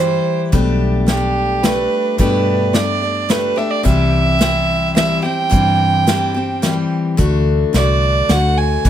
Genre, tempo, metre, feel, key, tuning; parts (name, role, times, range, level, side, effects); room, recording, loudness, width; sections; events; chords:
honky-tonk and classic country; 108 BPM; 3/4; straight; C lydian; A4 = 440 Hz
rich fiddle; second line; 0.0-8.9 s; G4 to Ab5; -18 LUFS; right 4 dB
picked steel-string acoustic guitar; accompaniment; 0.0-8.9 s; E2 to G4; -18 LUFS; left 4 dB
vintage muted fingered electric bass; bass; 0.0-8.9 s; B1 to G2; -18 LUFS; equal
unplugged drum kit; drums; 0.5-8.9 s; hi-hat, kick drum, snare drum; -17 LUFS; equal
light reverb; close, detailed microphones; -13 LUFS; side -10 dB against mid
0.0-8.9 A section
fiddle solo 0.0-8.9
0.0 C; 0.5 Gadd9/B; 3.9 C; 7.2 D